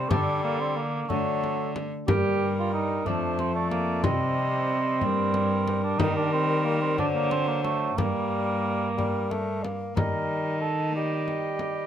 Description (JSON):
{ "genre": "classical, renaissance-style consort dance", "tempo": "61 BPM (dotted quarters)", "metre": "6/8", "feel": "straight", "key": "G minor", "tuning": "A4 = 440 Hz", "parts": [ { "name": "alto recorder", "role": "melody", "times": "0.0-11.9 s", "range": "A4 to Eb5", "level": "-33 LUFS", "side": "left 4 dB", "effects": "none" }, { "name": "dark cor anglais", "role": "second line", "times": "0.0-11.9 s", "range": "A3 to Bb4", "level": "-29 LUFS", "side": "right 5 dB", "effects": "none" }, { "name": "Celtic harp", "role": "accompaniment", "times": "0.0-11.9 s", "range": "F2 to D5", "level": "-34 LUFS", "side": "left 8 dB", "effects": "none" }, { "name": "clear bassoon", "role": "accompaniment", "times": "0.0-11.9 s", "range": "F#3 to Bb3", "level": "-32 LUFS", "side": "left 1 dB", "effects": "none" }, { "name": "rich cello", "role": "bass", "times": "0.0-11.9 s", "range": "F2 to Eb3", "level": "-30 LUFS", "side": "right 1 dB", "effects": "none" }, { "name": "frame drum", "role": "percussion", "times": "0.1-11.9 s", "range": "none", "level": "-29 LUFS", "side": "left 2 dB", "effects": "none" } ], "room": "light reverb", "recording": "close, detailed microphones", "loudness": "-24 LUFS", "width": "side -9 dB against mid", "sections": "0.0-10.0 A section; 10.0-11.9 B section", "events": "none", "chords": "0.1 Dsus4; 1.1 D; 2.1 Gm; 3.1 F; 4.0 Cm; 5.0 Gm; 6.0 Eb; 7.0 D7; 8.0 Gm; 10.0 Eb", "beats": "| 0.10 1.09 | 2.08 3.07 | 4.05 5.02 | 6.00 6.99 | 7.98 8.98 | 9.97 10.96" }